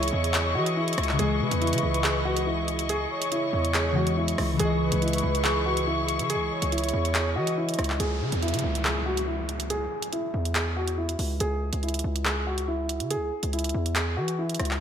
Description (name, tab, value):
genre	hip hop, drill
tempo	141 BPM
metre	4/4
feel	half-time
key	C# minor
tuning	A4 = 443 Hz
part	dark concert grand piano	melody	0.0-14.8 s	E4 to G#4	-30 LUFS	equal	low-pass filter, ping-pong delay
part	breathy flute-like synth lead	second line	0.0-7.6 s	B4 to D#5	-32 LUFS	right 4 dB	chorus, ping-pong delay
part	glassy digital keys	accompaniment	0.0-8.0 s	C#3 to D#5	-31 LUFS	left 2 dB	chorus, low-pass filter
part	muted studio string section	sustained chords	0.0-8.0 s	E4 to C#6	-30 LUFS	left 3 dB	none
part	distorted 808-style bass	bass	0.0-14.8 s	C#2 to E3	-29 LUFS	equal	distortion
part	drill drum kit	drums	0.0-14.8 s	handclaps, hi-hat, rim click	-30 LUFS	right 1 dB	none
part	downlifter	sound effects	8.0-11.4 s	none	-37 LUFS	right 1 dB	none
room	wet lush hall reverb, RT60 1.8 s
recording	dreamy mix soaked in reverb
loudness	-24 LUFS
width	side -8 dB against mid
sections	0.0-8.0 A section; 8.0-14.8 B section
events	none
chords	0.0 C#madd9; 8.0 C#m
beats	0.34 0.77 | 1.19 1.62 2.04 2.47 | 2.89 3.32 3.74 4.17 | 4.59 5.02 5.45 5.87 | 6.30 6.72 7.15 7.57 | 8.00 8.43 8.85 9.28 | 9.70 10.13 10.55 10.98 | 11.40 11.83 12.26 12.68 | 13.11 13.53 13.96 14.38